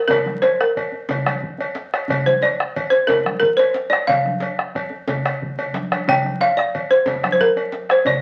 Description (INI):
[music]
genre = west african traditional, West African drum ensemble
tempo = 120 BPM (dotted quarters)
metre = 12/8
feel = straight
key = Bb major pentatonic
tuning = A4 = 437 Hz
[part]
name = balafon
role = melody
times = 0.0-8.2 s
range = Bb4 to G5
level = -19 LUFS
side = equal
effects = none
[part]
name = bombo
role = percussion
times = 0.1-8.2 s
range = none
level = -28 LUFS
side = equal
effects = none
[part]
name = congas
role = percussion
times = 0.1-8.2 s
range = none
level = -30 LUFS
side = equal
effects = none
[part]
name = cowbell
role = percussion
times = 0.1-8.2 s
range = none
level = -28 LUFS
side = equal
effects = none
[part]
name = djembe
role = percussion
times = 0.1-8.2 s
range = none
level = -33 LUFS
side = equal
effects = none
[sound]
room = moderate studio reverb, RT60 0.7 s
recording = very old 78 rpm record, vinyl crackle, nothing above 10.8 kHz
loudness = -19 LUFS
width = mono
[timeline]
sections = 0.0-8.2 A section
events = drum fill 5.4-6.1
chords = none